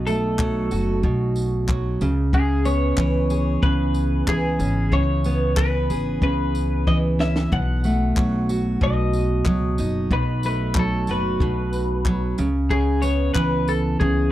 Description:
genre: acoustic pop.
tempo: 93 BPM.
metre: 4/4.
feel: straight.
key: C# minor.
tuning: A4 = 440 Hz.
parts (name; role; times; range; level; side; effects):
picked steel-string acoustic guitar; accompaniment; 0.0-14.3 s; B2 to G#4; -22 LUFS; right 2 dB; none.
upright bass; bass; 0.0-14.3 s; F#1 to C#2; -24 LUFS; left 1 dB; none.
twelve-string electric guitar; melody; 0.1-14.3 s; G#4 to F#5; -27 LUFS; left 3 dB; slapback echo.
compact cocktail drum kit; drums; 0.1-14.2 s; handclaps, kick drum, snare drum, tambourine; -25 LUFS; left 1 dB; none.
room: little or no reverb.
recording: dry, close 1970s-style studio recording.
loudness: -19 LUFS.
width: side -14 dB against mid.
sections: 0.0-14.3 A section.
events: drum fill 6.9-7.5.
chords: 0.0 B7; 2.0 C#m7; 7.5 B7; 12.4 C#m7.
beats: 0.39 1.04 1.69 | 2.34 2.98 3.63 4.28 | 4.93 5.57 6.22 6.87 | 7.52 8.17 8.81 9.46 | 10.11 10.76 11.41 12.06 | 12.71 13.36 14.01.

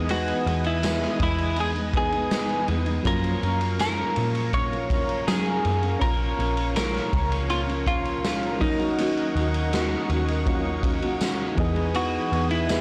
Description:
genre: indie pop, bedroom pop.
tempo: 81 BPM.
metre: 4/4.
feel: straight.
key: unclear.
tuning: A4 = 441 Hz.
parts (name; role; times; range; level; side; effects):
nylon-string guitar; accompaniment; 0.0-12.8 s; F#2 to G#4; -33 LUFS; equal; lush chorus, warbly pitch drift.
soft electric-piano-like synth keys; accompaniment; 0.0-12.8 s; E3 to D#5; -35 LUFS; equal; chorus, tremolo, cassette tape.
lush unison pad; sustained chords; 0.0-12.8 s; A#4 to D#6; -36 LUFS; equal; chorus.
vintage muted picked electric bass; bass; 0.0-12.8 s; A#1 to F#3; -30 LUFS; equal; transformer saturation.
semi-hollow electric guitar; melody; 0.1-12.8 s; D#4 to C#5; -30 LUFS; equal; analog chorus, slapback echo.
raw garage drum kit; drums; 0.1-12.8 s; hi-hat, kick drum, ride cymbal, snare drum; -31 LUFS; equal; none.
tambourine; percussion; 0.8-12.8 s; none; -42 LUFS; equal; none.
room: light reverb, studio reverb.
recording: blown-out, overdriven recording, overdrive.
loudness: -24 LUFS.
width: mono.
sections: 0.0-12.8 A section.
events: none.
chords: 0.0 Emaj7; 3.1 F#maj7; 6.0 A#m; 8.6 D#m7; 11.6 Emaj7.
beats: | 0.09 0.83 1.57 2.31 | 3.06 3.80 4.54 5.28 | 6.02 6.76 7.50 8.24 | 8.98 9.72 10.47 11.21 | 11.95 12.69.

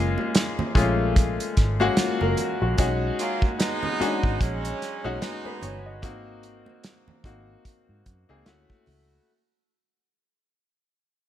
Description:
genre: lush 1970s-style soul.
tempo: 74 BPM.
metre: 4/4.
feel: swing 58% on 16ths.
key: unclear.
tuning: A4 = 435 Hz.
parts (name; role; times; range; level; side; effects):
clear grand piano; accompaniment; 0.0-9.3 s; Ab3 to Eb5; -26 LUFS; left 3 dB; none.
vintage muted fingered electric bass; bass; 0.0-9.2 s; Gb1 to Ab2; -27 LUFS; equal; none.
congas; percussion; 0.2-9.3 s; none; -36 LUFS; right 4 dB; none.
warm soul drum kit; drums; 0.3-9.1 s; hi-hat, kick drum, snare drum; -23 LUFS; equal; none.
clear horn section; stabs; 3.2-5.8 s; Gb3 to F4; -30 LUFS; right 3 dB; none.
room: light reverb.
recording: none.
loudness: -22 LUFS.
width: side -11 dB against mid.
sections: 0.0-9.3 A section.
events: fade-out 0.0-9.3.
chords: 0.0 Gbmaj7; 2.8 Cb6; 6.0 Ab7; 8.5 Dmaj7.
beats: 0.35 1.16 1.98 | 2.79 3.60 4.41 5.22 | 6.03 6.84 7.65 8.46.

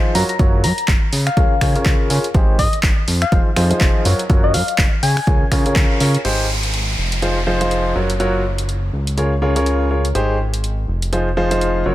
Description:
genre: piano house.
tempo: 123 BPM.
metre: 4/4.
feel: swing 58% on 16ths.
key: unclear.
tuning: A4 = 441 Hz.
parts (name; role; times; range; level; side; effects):
clear baby grand piano; riff; 0.0-11.9 s; Db3 to Db5; -20 LUFS; equal; sidechain pumping, low-pass filter, dub echo.
soft struck synth lead; melody; 0.1-5.7 s; Eb5 to Bb5; -24 LUFS; left 4 dB; chorus, phaser, dub echo.
fat analog bass; bass; 0.1-11.9 s; F1 to Db3; -19 LUFS; equal; sidechain pumping.
punchy analog drum machine; drums; 0.1-11.7 s; crash cymbal, finger snaps, handclaps, hi-hat; -23 LUFS; equal; overdrive.
electronic kick drum; drums; 0.4-5.9 s; none; -16 LUFS; equal; overdrive.
downlifter; sound effects; 6.2-10.2 s; none; -26 LUFS; right 1 dB; none.
room: light reverb.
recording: none.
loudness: -14 LUFS.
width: side -15 dB against mid.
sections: 0.0-6.2 A section; 6.2-11.9 B section.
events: band accent 5.8.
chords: 0.1 Gbmaj7; 1.1 Db6; 2.3 Abmaj7; 3.1 Fm7; 4.1 Gbmaj7; 5.0 Db6; 6.2 Abmaj7; 7.0 Fm7; 8.0 Gbmaj7; 8.9 Db6; 10.2 Abmaj7; 10.9 Fm7.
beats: | 0.39 0.88 1.37 1.86 | 2.35 2.83 3.32 3.81 | 4.30 4.79 5.27 5.76 | 6.25 6.74 7.22 7.71 | 8.20 8.69 9.18 9.66 | 10.15 10.64 11.13 11.61.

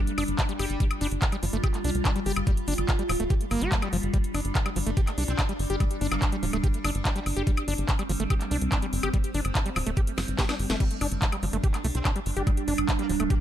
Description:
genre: psychedelic trance.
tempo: 144 BPM.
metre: 4/4.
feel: straight.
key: unclear.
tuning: A4 = 441 Hz.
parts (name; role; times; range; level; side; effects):
evolving wavetable pad; sustained chords; 0.0-13.4 s; G3 to F4; -32 LUFS; right 1 dB; phaser, built-in reverb, sidechain pumping.
drum and bass drum kit; drums; 0.1-13.4 s; crash cymbal, handclaps, hi-hat, snare drum, woodblock; -32 LUFS; left 1 dB; none.
overdriven acid bass; riff; 0.2-13.3 s; F3 to G4; -33 LUFS; moving between left 5 dB and right 4 dB; distortion, auto-pan, sidechain pumping, digital delay.
tight sequencer bass; bass; 0.2-13.3 s; D1 to C2; -29 LUFS; equal; none.
electronic kick drum; drums; 0.4-13.4 s; none; -25 LUFS; equal; none.
metallic wobble bass; second line; 0.5-1.1, 5.3-7.2, 11.9-13.1 s; G3 to C4; -43 LUFS; right 2 dB; distortion, analog chorus, sidechain pumping, high-pass filter, ping-pong delay.
room: digital ambience.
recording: none.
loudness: -24 LUFS.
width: side -11 dB against mid.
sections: 0.0-13.4 A section.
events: drum fill 10.2-10.8.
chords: 0.0 G5.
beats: 0.39 | 0.80 1.22 1.64 2.05 | 2.47 2.89 3.30 3.72 | 4.14 4.55 4.97 5.39 | 5.80 6.22 6.64 7.05 | 7.47 7.89 8.30 8.72 | 9.14 9.55 9.97 10.39 | 10.80 11.22 11.64 12.05 | 12.47 12.89 13.30.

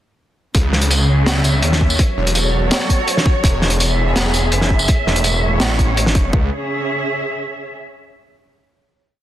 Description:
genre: half-time drum and bass.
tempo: 166 BPM.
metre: 4/4.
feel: half-time.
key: C# minor.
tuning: A4 = 442 Hz.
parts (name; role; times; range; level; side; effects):
dark studio cello section; sustained chords; 0.5-7.7 s; A2 to E5; -22 LUFS; right 1 dB; sidechain pumping.
phased detuned saw bass; bass; 0.5-6.5 s; E1 to D#2; -17 LUFS; equal; phaser.
crunchy breakbeat drum kit; drums; 0.5-6.2 s; hi-hat, snare drum, tambourine; -18 LUFS; equal; none.
electronic kick drum; drums; 0.5-6.4 s; none; -16 LUFS; equal; none.
pulsing gated texture; texture; 1.0-6.3 s; C#5; -29 LUFS; left 1 dB; chorus, built-in reverb.
room: light reverb, small room ambience.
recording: dense, heavily limited modern master.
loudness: -14 LUFS.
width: side -12 dB against mid.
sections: 0.5-6.3 drop; 6.3-7.8 final chord.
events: drop 0.5-6.3.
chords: 0.5 C#m; 2.0 F#m; 3.4 E; 4.9 A; 6.3 C#m.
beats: | 0.55 0.91 1.27 1.63 | 1.99 2.35 2.72 3.08 | 3.44 3.80 4.16 4.52 | 4.88 5.25 5.61 5.97 | 6.33 6.69 7.05 7.42.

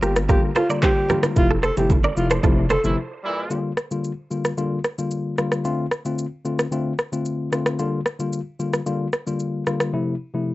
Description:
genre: afrobeats.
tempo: 112 BPM.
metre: 4/4.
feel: straight.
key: G dorian.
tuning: A4 = 438 Hz.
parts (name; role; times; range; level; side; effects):
breathy alto saxophone; melody; 0.0-2.8 s; F4 to A4; -23 LUFS; equal; cassette tape, analog delay.
tine electric piano; accompaniment; 0.0-10.5 s; C3 to F4; -24 LUFS; left 2 dB; cassette tape.
direct-recorded clean electric guitar; riff; 0.0-2.8 s; F4 to D5; -26 LUFS; right 3 dB; spring reverb, cassette tape, analog delay.
saturated sub bass; bass; 0.0-3.0 s; F1 to G1; -24 LUFS; equal; none.
afro-pop drum kit; drums; 0.0-9.9 s; handclaps, kick drum, rim click, shaker; -22 LUFS; equal; cassette tape.
congas and bongos; percussion; 0.3-2.8 s; none; -28 LUFS; right 5 dB; none.
clear horn section; second line; 2.8-3.6 s; Bb2 to E4; -26 LUFS; right 1 dB; cassette tape.
room: light reverb.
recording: home recording on cassette, nothing above 7.9 kHz.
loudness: -20 LUFS.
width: side -18 dB against mid.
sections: 0.0-3.5 A section; 3.5-10.5 B section.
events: band accent 1.4-3.5; break 3.0-3.5.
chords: 0.0 Gm7; 1.4 Fmaj7; 3.5 Gm7; 5.6 Dm7; 7.8 Gm7; 9.9 Fmaj7.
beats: 0.29 0.83 | 1.36 1.90 2.43 2.97 | 3.51 4.04 4.58 5.11 | 5.65 6.18 6.72 7.26 | 7.79 8.33 8.86 9.40 | 9.93 10.47.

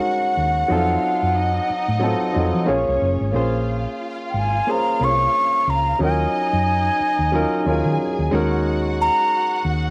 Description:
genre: soul.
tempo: 90 BPM.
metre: 4/4.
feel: swing 58% on 16ths.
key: Bb minor.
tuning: A4 = 436 Hz.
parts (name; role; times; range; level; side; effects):
breathy mellow silver concert flute; melody; 0.0-9.6 s; Gb5 to Db6; -22 LUFS; equal; none.
warm studio violin section; second line; 0.0-9.9 s; Db4 to Ab5; -31 LUFS; equal; cassette tape.
warm baby grand piano; accompaniment; 0.0-9.9 s; Gb3 to Db5; -26 LUFS; equal; cassette tape.
hollow-body short-scale fingered electric bass; bass; 0.4-9.9 s; Gb1 to F3; -25 LUFS; equal; none.
room: light reverb.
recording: home recording on cassette.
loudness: -20 LUFS.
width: mono.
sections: 0.0-3.4 A section; 3.4-9.9 A section.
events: none.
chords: 0.0 Ab9sus4; 0.7 F7b9; 2.7 Bbm9; 6.0 Ebm9; 8.3 Ab9sus4/Eb.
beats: 0.04 | 0.71 1.37 2.03 2.69 | 3.36 4.02 4.68 5.35 | 6.01 6.67 7.33 8.00 | 8.66 9.33.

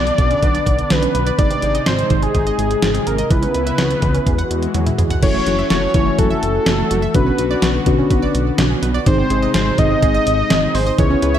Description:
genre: synth-pop.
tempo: 125 BPM.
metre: 4/4.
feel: straight.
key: unclear.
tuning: A4 = 441 Hz.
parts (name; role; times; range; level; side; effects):
fat analog lead; melody; 0.0-11.4 s; G#4 to D#5; -20 LUFS; equal; ping-pong delay.
brassy analog pad; sustained chords; 0.0-11.4 s; B#2 to F#4; -24 LUFS; left 1 dB; chorus.
analog pluck; arpeggios; 0.0-11.4 s; D3 to C#6; -25 LUFS; right 5 dB; chorus, ping-pong delay.
chorused synth bass; bass; 0.0-11.4 s; F#1 to E2; -20 LUFS; equal; none.
detuned 8-bit digital drum machine; drums; 0.1-11.3 s; crash cymbal, hi-hat, kick drum, snare drum, toms; -18 LUFS; equal; gated reverb.
muted felt-like synth keys; accompaniment; 5.2-11.4 s; B#3 to G#5; -22 LUFS; left 6 dB; chorus.
room: moderate lush hall reverb, RT60 2.2 s.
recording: bright 1980s-style digital production.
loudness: -14 LUFS.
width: side -10 dB against mid.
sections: 0.0-5.2 A section; 5.2-11.4 B section.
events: drum fill 4.7-5.2.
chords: 0.0 Bmadd9; 1.4 G#; 3.3 C#m7; 4.3 Eadd9; 5.2 F#m7; 7.1 Bmadd9; 9.1 G#.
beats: 0.43 0.91 | 1.39 1.87 2.35 2.83 | 3.31 3.79 4.27 4.75 | 5.23 5.71 6.19 6.67 | 7.15 7.63 8.11 8.59 | 9.07 9.55 10.03 10.51 | 10.99.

